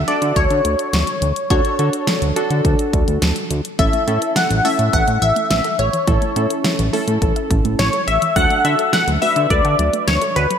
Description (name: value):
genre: synth-pop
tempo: 105 BPM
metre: 4/4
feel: straight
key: unclear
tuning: A4 = 440 Hz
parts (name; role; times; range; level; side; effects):
- funky polysynth comp; melody; 0.0-10.6 s; B4 to F#5; -18 LUFS; left 2 dB; chorus, ping-pong delay
- fat analog bass; bass; 0.0-10.5 s; A1 to D3; -19 LUFS; equal; none
- warm analog keys; accompaniment; 0.1-10.2 s; C#4 to B4; -24 LUFS; right 1 dB; chorus
- pop drum kit; drums; 0.1-10.6 s; hi-hat, kick drum, snare drum; -21 LUFS; equal; gated reverb
- soft round pluck; arpeggios; 3.8-10.6 s; E3 to F#5; -28 LUFS; right 2 dB; chorus, ping-pong delay
room: moderate lush hall reverb, RT60 2.5 s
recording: bright 1980s-style digital production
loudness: -15 LUFS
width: side -8 dB against mid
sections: 0.0-10.6 A section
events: none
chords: 0.0 D; 3.8 A; 8.4 D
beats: 0.36 0.93 | 1.50 2.08 2.65 3.22 | 3.79 4.36 4.93 5.50 | 6.08 6.65 7.22 7.79 | 8.36 8.93 9.50 10.08